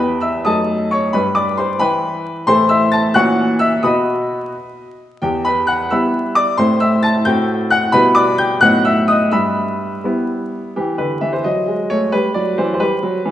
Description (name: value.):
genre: classical-period piano sonatina.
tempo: 88 BPM (dotted quarters).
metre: 6/8.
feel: straight.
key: E minor.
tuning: A4 = 440 Hz.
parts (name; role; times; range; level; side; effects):
bright baby grand piano; solo; 0.0-13.3 s; E2 to A6; -14 LUFS; equal; none.
room: wet recital hall reverb, RT60 1.9 s.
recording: vinyl crackle, nothing above 10.7 kHz.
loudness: -14 LUFS.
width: side -12 dB against mid.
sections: 0.0-10.8 A section; 10.8-13.3 A section.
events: none.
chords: 0.4 D#dim/F#; 1.1 Em/G; 2.5 Am; 3.1 F#7/A#; 3.8 B; 5.2 Em; 6.6 Am; 7.3 F#dim/A; 7.9 Em/B; 8.6 B7/A; 9.3 Em/G; 10.8 D13sus4; 11.4 D#dim/F#; 12.1 Em.